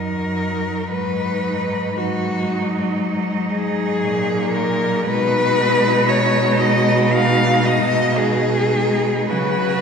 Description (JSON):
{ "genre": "classical, lyrical piece for cello ensemble", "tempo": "58 BPM", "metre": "4/4", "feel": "rubato", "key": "unclear", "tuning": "A4 = 440 Hz", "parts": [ { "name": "warm cello", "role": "melody", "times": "0.0-9.8 s", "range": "Gb4 to E#5", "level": "-20 LUFS", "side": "left 3 dB", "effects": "none" }, { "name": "warm cello", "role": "second line", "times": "0.0-9.8 s", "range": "Eb4 to F#4", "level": "-24 LUFS", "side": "right 6 dB", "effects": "none" }, { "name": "warm cello", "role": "accompaniment", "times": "0.0-9.8 s", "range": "Gb3 to G#3", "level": "-23 LUFS", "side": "equal", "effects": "none" }, { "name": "rich cello", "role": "bass", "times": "0.0-9.8 s", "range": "Gb2 to C#3", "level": "-22 LUFS", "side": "right 1 dB", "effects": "none" } ], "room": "wet church reverb, RT60 2.7 s", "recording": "minimal, uncompressed stereo recording", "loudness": "-16 LUFS", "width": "side -6 dB against mid", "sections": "0.0-9.8 A section", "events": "none", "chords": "0.0 Ebm; 0.9 Abm7; 5.1 G#m/B; 9.3 F#5/C#" }